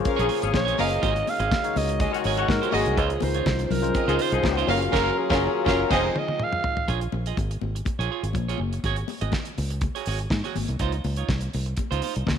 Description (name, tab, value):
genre	disco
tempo	123 BPM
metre	4/4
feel	straight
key	Bb minor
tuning	A4 = 440 Hz
part	barky tine electric piano	accompaniment	0.0-6.1 s	Db3 to F5	-29 LUFS	left 12 dB	none
part	clean electric guitar	accompaniment	0.0-12.3 s	Eb4 to Eb5	-31 LUFS	right 13 dB	none
part	dark French horn section	sustained chords	0.0-6.9 s	Db3 to C5	-33 LUFS	right 2 dB	stereo widening
part	warm studio violin section	second line	0.1-6.1 s	Ab3 to F5	-28 LUFS	right 1 dB	none
part	damped 70s drum kit	drums	0.1-12.4 s	crash cymbal, hi-hat, kick drum, snare drum, toms	-29 LUFS	equal	none
part	congas	percussion	0.1-12.4 s	none	-35 LUFS	left 12 dB	none
part	mellow horn section	stabs	0.2-6.0 s	Eb3 to Ab4	-31 LUFS	left 10 dB	none
part	fingered electric bass	bass	0.2-12.4 s	F1 to Ab2	-27 LUFS	equal	none
part	breathy alto saxophone	melody	0.6-6.9 s	Ab4 to F5	-28 LUFS	right 4 dB	none
room	light reverb, studio reverb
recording	1960s-style stereo with parts hard left and right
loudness	-22 LUFS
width	side -8 dB against mid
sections	0.0-6.9 A section; 6.9-12.4 B section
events	alto saxophone solo 0.0-6.9; band accent 4.9-6.9; drum fill 5.9-6.9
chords	0.0 Bbm7; 1.0 Ab7sus4; 3.0 Dbmaj9; 4.7 Gbmaj7; 5.9 Fm7; 6.9 Bbm7; 8.8 Ab7sus4; 10.8 Dbmaj9